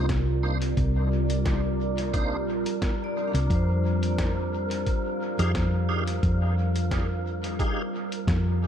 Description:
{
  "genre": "ambient dub",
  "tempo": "88 BPM",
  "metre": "4/4",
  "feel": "swing 54% on 16ths",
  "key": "unclear",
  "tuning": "A4 = 439 Hz",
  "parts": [
    { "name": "deep dark ambient pad", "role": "sustained chords", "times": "0.0-8.7 s", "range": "G3 to F5", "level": "-30 LUFS", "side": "right 1 dB", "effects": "chorus, built-in reverb" },
    { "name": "tonewheel organ", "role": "stabs", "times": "0.0-7.8 s", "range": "Bb3 to F5", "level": "-36 LUFS", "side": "right 2 dB", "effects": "overdrive, chorus vibrato, slow rotary speaker, dub echo" },
    { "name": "hollow-body short-scale fingered electric bass", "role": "bass", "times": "0.0-8.7 s", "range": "Bb1 to F2", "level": "-25 LUFS", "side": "equal", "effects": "none" },
    { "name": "wind-like tuned noise texture", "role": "texture", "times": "0.2-8.7 s", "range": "Bb4", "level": "-37 LUFS", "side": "equal", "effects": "built-in reverb" },
    { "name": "electronic kick drum", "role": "drums", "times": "0.1-8.4 s", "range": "none", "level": "-28 LUFS", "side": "equal", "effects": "studio reverb" },
    { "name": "lo-fi sampler-style drum kit", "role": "drums", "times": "0.1-8.4 s", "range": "hi-hat, snare drum", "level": "-37 LUFS", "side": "equal", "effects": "studio reverb, dub echo" },
    { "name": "vibraphone with hard mallets", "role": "arpeggios", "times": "3.0-8.7 s", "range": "D4 to D5", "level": "-36 LUFS", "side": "left 3 dB", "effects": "dub echo" }
  ],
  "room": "little or no reverb",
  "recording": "echo-heavy mix",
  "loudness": "-24 LUFS",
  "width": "side -9 dB against mid",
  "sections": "0.0-8.7 A section",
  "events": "none",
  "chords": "0.0 Cm9; 3.5 Fm9"
}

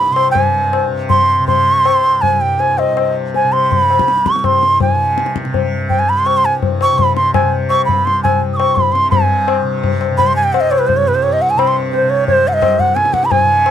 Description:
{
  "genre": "indian classical, Hindustani",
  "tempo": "159-176 BPM",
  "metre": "3/4",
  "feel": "straight",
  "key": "C raga todi",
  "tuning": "A4 = 442 Hz",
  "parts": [
    { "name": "bright reedy bansuri", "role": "melody", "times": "0.0-13.7 s", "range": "B4 to Eb6+23c", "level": "-13 LUFS", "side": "right 2 dB", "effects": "none" },
    { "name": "tanpura", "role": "drone", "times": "0.0-13.7 s", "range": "C2 to C3", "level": "-22 LUFS", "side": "right 2 dB", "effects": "stereo widening" },
    { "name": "tabla", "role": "percussion", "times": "0.2-13.7 s", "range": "none", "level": "-17 LUFS", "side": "left 7 dB", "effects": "none" }
  ],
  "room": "light reverb",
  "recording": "dry, close 1970s-style studio recording",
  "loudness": "-11 LUFS",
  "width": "side -10 dB against mid",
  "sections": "0.4-9.1 A section; 9.1-13.7 B section",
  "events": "speeding up 0.0-13.7",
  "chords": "none"
}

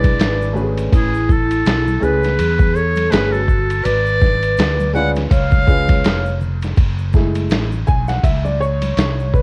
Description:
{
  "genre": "hip hop, jazz-hop",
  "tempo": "82 BPM",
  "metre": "4/4",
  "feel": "swing 58% on 16ths",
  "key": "unclear",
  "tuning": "A4 = 440 Hz",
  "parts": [
    { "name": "trumpet with metal mute", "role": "melody", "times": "0.0-6.4 s", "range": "G#4 to F#5", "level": "-24 LUFS", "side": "equal", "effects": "cassette tape" },
    { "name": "vibraphone with medium mallets", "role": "second line", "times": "0.0-6.4 s", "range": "E4 to D5", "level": "-24 LUFS", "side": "equal", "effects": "cassette tape" },
    { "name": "warm upright piano", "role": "accompaniment", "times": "0.0-9.4 s", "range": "G#3 to G#5", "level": "-25 LUFS", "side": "equal", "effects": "cassette tape" },
    { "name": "mellow fretless electric bass", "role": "bass", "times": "0.0-9.4 s", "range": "E#1 to E2", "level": "-22 LUFS", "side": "equal", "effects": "none" },
    { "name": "lo-fi sampler-style drum kit", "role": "drums", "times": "0.0-9.4 s", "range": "hi-hat, kick drum, ride cymbal, snare drum", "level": "-20 LUFS", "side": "equal", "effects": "cassette tape" },
    { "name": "congas and tube shaker", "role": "percussion", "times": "0.0-9.4 s", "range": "none", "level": "-33 LUFS", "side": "equal", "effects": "none" }
  ],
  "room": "small room ambience",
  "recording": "home recording on cassette",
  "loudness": "-16 LUFS",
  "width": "mono",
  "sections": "0.0-6.8 A section; 6.8-9.4 B section",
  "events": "upright piano solo 6.8-9.4",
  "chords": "0.0 E7; 0.9 Amaj9; 3.9 G#dim; 5.3 C#7; 6.8 F#m7"
}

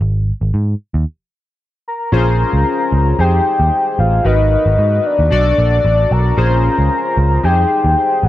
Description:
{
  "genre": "early-eighties boogie funk",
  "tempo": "113 BPM",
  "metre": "4/4",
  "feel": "straight",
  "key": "unclear",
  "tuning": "A4 = 440 Hz",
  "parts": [
    { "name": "vintage muted picked electric bass", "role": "bass", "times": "0.0-8.3 s", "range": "Ab1 to Ab2", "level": "-14 LUFS", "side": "right 1 dB", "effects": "none" },
    { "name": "soft octave-layered synth lead", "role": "melody", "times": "1.9-8.3 s", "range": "D5 to Bb5", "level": "-16 LUFS", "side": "left 2 dB", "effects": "chorus, tremolo" },
    { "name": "chorused polysynth", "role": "accompaniment", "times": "2.1-8.3 s", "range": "Db4 to D5", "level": "-19 LUFS", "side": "left 3 dB", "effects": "none" }
  ],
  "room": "light reverb, digital ambience",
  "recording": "none",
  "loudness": "-12 LUFS",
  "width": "side -14 dB against mid",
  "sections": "0.0-2.1 A section; 2.1-8.3 B section",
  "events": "break 1.1-2.1",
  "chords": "0.0 Ab5; 1.1 N.C.; 2.1 Bbm9; 3.2 Fm9; 4.3 Abm9; 5.3 Bm7; 6.4 Bbm9; 7.4 Fm9"
}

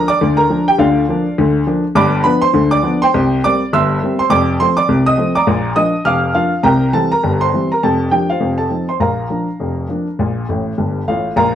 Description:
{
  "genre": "ragtime piano",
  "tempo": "102 BPM",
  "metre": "2/4",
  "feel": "swing 58% on 16ths",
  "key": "Bb major",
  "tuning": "A4 = 440 Hz",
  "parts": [
    { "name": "warm upright piano", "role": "solo", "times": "0.0-11.6 s", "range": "F1 to F6", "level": "-12 LUFS", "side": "equal", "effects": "none" }
  ],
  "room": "moderate studio reverb, RT60 0.7 s",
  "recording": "none",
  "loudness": "-13 LUFS",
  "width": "side -10 dB against mid",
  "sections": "0.0-11.4 A section",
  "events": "upright piano fill 10.5-11.4",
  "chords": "0.0 Bb/D; 2.0 G7; 3.1 C7; 4.3 F7; 5.5 Bb; 6.6 C7; 7.8 Bb/F; 8.4 F7; 9.0 Bb"
}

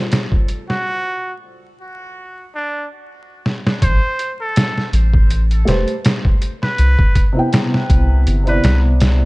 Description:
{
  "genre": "trip hop",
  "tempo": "81 BPM",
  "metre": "4/4",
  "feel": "swing 55% on 16ths",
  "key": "unclear",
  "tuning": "A4 = 440 Hz",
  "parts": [
    { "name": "felt-muted upright piano", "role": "accompaniment", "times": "0.0, 5.7-9.3 s", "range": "C3 to G5", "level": "-20 LUFS", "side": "equal", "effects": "harmonic tremolo, vintage 12-bit sampler grit, tape echo" },
    { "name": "trip hop sampler-style drum kit", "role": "drums", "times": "0.1-9.2 s", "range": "hi-hat, kick drum, snare drum", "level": "-16 LUFS", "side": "equal", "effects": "studio reverb" },
    { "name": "trumpet with straight mute", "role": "melody", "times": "0.7-8.8 s", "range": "D4 to C5", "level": "-25 LUFS", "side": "equal", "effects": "vintage 12-bit sampler grit, tape echo" },
    { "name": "soft dub sub bass", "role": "bass", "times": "3.8-9.3 s", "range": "E1 to C2", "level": "-14 LUFS", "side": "equal", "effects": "none" }
  ],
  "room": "studio reverb",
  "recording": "dark, warm production, vinyl crackle, nothing above 10.3 kHz",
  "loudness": "-14 LUFS",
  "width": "side -22 dB against mid",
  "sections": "0.0-3.8 A section; 3.8-9.3 B section",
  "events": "break 0.9-3.8; drum fill 3.4-3.8",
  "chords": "0.0 N.C.; 6.8 Cmaj9"
}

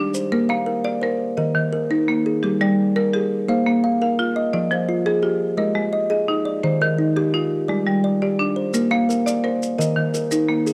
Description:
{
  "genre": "southern african traditional, mbira-style interlocking cycle",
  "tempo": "114 BPM (dotted quarters)",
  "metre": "12/8",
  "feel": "straight",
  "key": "Bb mixolydian",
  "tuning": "A4 = 442 Hz",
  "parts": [
    { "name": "buzzing marimba with hard mallets", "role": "arpeggios", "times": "0.0-10.7 s", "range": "Eb3 to F5", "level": "-26 LUFS", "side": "equal", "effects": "none" },
    { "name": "kalimba", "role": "arpeggios", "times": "0.0-10.7 s", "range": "Eb3 to F5", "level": "-22 LUFS", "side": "equal", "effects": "none" },
    { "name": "maracas", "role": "percussion", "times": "0.1-0.3, 8.7-10.7 s", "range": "none", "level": "-33 LUFS", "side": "equal", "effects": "none" }
  ],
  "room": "studio ambience",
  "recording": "dry, close 1970s-style studio recording",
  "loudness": "-21 LUFS",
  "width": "mono",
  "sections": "0.3-10.7 A section",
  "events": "none",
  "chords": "0.3 Bb; 1.4 Eb5; 2.4 Gm; 3.5 Bb5; 4.5 Fm; 5.6 Ab5; 6.6 Eb; 7.7 G5; 8.7 Bb; 9.8 Eb5"
}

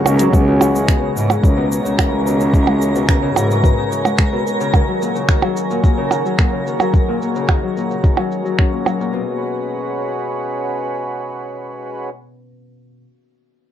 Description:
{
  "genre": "folktronica",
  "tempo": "109 BPM",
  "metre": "4/4",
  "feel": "straight",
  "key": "unclear",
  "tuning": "A4 = 442 Hz",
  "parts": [
    { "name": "mellow accordion", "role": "sustained chords", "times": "0.0-12.1 s", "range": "C#3 to B4", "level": "-24 LUFS", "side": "right 2 dB", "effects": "none" },
    { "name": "Celtic harp", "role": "arpeggios", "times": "0.0-13.0 s", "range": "A#2 to C#4", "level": "-21 LUFS", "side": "left 5 dB", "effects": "low-pass filter, ping-pong delay" },
    { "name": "muted cello", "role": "bass", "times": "0.1-3.5 s", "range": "C#2 to G#2", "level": "-17 LUFS", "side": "equal", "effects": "tube saturation" },
    { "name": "minimal click drum kit", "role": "drums", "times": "0.1-9.1 s", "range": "cabasa, finger snaps, hi-hat, percussion blips", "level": "-20 LUFS", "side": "right 5 dB", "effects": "low-pass filter on hats, low-pass filter on perc, low-pass filter on snare" },
    { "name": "electronic kick drum", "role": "drums", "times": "0.3-8.7 s", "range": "none", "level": "-14 LUFS", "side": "equal", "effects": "none" },
    { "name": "twinkling granular texture", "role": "texture", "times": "0.8-9.2 s", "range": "A#4 to A#5", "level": "-26 LUFS", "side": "right 3 dB", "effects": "built-in reverb" }
  ],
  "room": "light reverb",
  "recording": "lossy compression artefacts",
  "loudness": "-14 LUFS",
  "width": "side -10 dB against mid",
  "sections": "0.3-9.1 A section; 9.1-11.3 B section",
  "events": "filter sweep on harp 0.3-9.1",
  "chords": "0.3 C#m7; 4.7 D#m7; 9.1 C#5"
}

